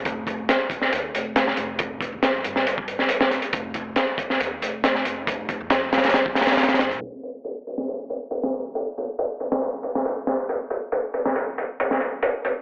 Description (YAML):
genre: breakbeat, breaks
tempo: 138 BPM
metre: 4/4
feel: swing 53% on 16ths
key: unclear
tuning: A4 = 440 Hz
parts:
  - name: upright bass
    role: bass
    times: 0.0-7.0 s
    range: F1 to F2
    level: -39 LUFS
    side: equal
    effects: none
  - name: crunchy breakbeat drum kit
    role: drums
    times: 0.1-12.6 s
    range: hi-hat, kick drum, snare drum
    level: -24 LUFS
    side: equal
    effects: low-pass filter on kick, low-pass filter on hats, low-pass filter on snare, low-pass filter on room
room: light reverb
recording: low-pass filter, telephone sound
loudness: -24 LUFS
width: mono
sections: 0.0-7.0 A section; 7.0-12.6 B section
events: filter sweep 7.0-12.6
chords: none